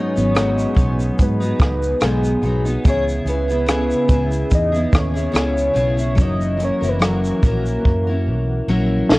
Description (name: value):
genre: indie pop, bedroom pop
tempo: 72 BPM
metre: 4/4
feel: swing 55% on 16ths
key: unclear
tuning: A4 = 439 Hz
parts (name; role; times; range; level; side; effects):
- soft octave-layered synth lead; melody; 0.0-9.1 s; G#4 to D#5; -22 LUFS; equal; phaser, lush chorus, tape echo
- picked steel-string acoustic guitar; accompaniment; 0.0-9.2 s; G#2 to A#4; -22 LUFS; left 1 dB; analog chorus, warbly pitch drift
- warm analog pad; sustained chords; 0.0-9.2 s; C#3 to G#4; -28 LUFS; right 1 dB; chorus, tremolo
- vintage muted fingered electric bass; bass; 0.2-9.2 s; F#1 to G#2; -21 LUFS; equal; none
- compact cocktail drum kit; drums; 0.2-9.2 s; hi-hat, kick drum, rim click, shaker, snare drum; -18 LUFS; equal; none
room: light reverb, small room ambience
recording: worn, warbling old tape, cassette tape, warbly pitch drift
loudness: -16 LUFS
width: side -20 dB against mid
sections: 0.0-9.2 A section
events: drum fill 7.8-9.2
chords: 0.0 G#m7; 2.8 C#m7; 6.2 F#7